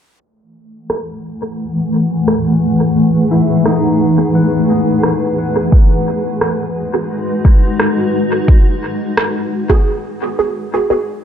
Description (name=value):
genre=ambient dub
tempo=87 BPM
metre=4/4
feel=straight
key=F# dorian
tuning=A4 = 440 Hz
part: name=granular cloud pad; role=sustained chords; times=1.4-9.9 s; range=E3 to F#5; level=-15 LUFS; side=left 1 dB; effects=built-in reverb
part: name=electronic rim click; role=drums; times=0.9-9.3 s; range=none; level=-20 LUFS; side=right 1 dB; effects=dub echo
part: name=filtered dub chord stab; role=stabs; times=1.4-11.1 s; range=A3 to G#4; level=-17 LUFS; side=right 3 dB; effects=phaser, ensemble chorus, dub echo
part: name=concert harp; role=arpeggios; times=3.3-7.5 s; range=B3 to E4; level=-20 LUFS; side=left 1 dB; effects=low-pass filter, tape echo
part: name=electronic kick drum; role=drums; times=5.7-9.8 s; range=none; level=-9 LUFS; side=equal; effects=none
room=light reverb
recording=echo-heavy mix, low-pass filter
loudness=-12 LUFS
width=side -9 dB against mid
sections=0.2-11.2 A section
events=filter sweep on synth stab 0.2-11.2; filter sweep 0.2-11.2; break 9.9-11.2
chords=0.2 F#m11; 5.7 G#m7